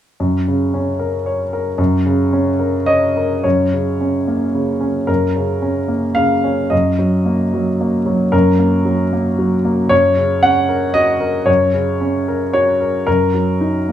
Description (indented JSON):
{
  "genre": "neoclassical minimalist piano",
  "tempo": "112 BPM",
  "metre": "3/4",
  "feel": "rubato",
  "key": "F# major",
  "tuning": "A4 = 440 Hz",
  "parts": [
    { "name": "warm grand piano", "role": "solo", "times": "0.2-13.9 s", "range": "F#2 to F#5", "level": "-14 LUFS", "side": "equal", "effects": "none" }
  ],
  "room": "light reverb",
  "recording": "band playing live in one room",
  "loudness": "-14 LUFS",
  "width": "side -11 dB against mid",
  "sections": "0.2-3.4 A section; 3.4-13.9 B section",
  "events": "none",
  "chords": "0.2 F#; 6.7 D#m/F#; 9.9 F#; 13.1 D#m/F#"
}